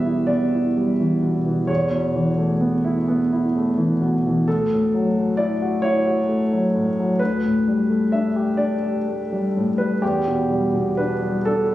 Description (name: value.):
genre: neoclassical minimalist piano.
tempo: 43 BPM (dotted quarters).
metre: 6/8.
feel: rubato.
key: D major.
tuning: A4 = 439 Hz.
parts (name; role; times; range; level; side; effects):
warm concert grand piano; solo; 0.0-11.7 s; D2 to E5; -18 LUFS; equal; none.
room: light reverb.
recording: recorded on a phone in the room, studio reverb, compression.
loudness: -18 LUFS.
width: side -15 dB against mid.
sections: 0.0-11.7 A section.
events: none.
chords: 0.0 Em7; 1.7 Aadd9/E; 4.5 Dadd9; 7.2 Gadd9/D; 10.0 Em7.